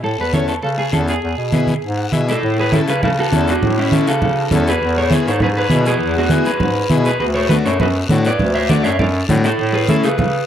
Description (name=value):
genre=latin, cumbia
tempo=201 BPM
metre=4/4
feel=straight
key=A major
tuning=A4 = 440 Hz
part: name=electric guitar at the edge of break-up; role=melody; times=0.0-10.5 s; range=C#4 to E5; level=-19 LUFS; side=right 1 dB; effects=none
part: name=clear bass clarinet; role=bass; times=0.0-10.4 s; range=D2 to C#3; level=-20 LUFS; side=equal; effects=none
part: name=guiro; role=percussion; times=0.0-10.5 s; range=none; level=-30 LUFS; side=left 7 dB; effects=none
part: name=combo organ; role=accompaniment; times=0.3-10.1 s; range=A3 to F#5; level=-21 LUFS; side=left 4 dB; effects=none
part: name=congas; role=percussion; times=0.3-10.3 s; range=none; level=-19 LUFS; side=right 2 dB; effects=none
room=light reverb, studio reverb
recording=dark, warm production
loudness=-14 LUFS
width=side -9 dB against mid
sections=0.0-2.4 A section; 2.4-10.5 B section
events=transistor combo organ fill 1.8-2.4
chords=0.0 A; 1.2 E; 2.4 A; 4.8 E; 7.2 D; 9.6 A